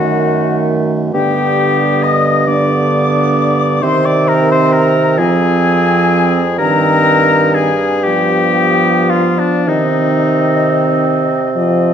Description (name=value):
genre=classical, slow romantic movement for wind quintet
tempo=31-45 BPM (dotted quarters)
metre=6/8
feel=rubato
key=C minor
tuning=A4 = 438 Hz
part: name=silver concert flute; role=melody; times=0.0-11.9 s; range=D5 to Eb6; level=-20 LUFS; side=left 8 dB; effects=none
part: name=warm oboe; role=second line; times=0.0-11.5 s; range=D4 to Eb5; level=-16 LUFS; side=left 3 dB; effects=none
part: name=clear clarinet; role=accompaniment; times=0.0-11.9 s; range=A3 to C4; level=-19 LUFS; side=right 8 dB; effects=none
part: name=warm French horn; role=accompaniment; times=0.0-11.9 s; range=D3 to F3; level=-17 LUFS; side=equal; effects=none
part: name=warm bassoon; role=bass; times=0.0-11.9 s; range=F2 to C3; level=-16 LUFS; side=right 2 dB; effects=none
room=wet recital hall reverb, RT60 1.6 s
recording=dark, warm production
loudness=-10 LUFS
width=side -8 dB against mid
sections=0.0-11.9 A section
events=none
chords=0.0 B7/F# (rootless); 1.1 G; 3.8 Cm; 5.2 Fm; 6.6 Cm/G; 8.0 G7; 9.7 Cm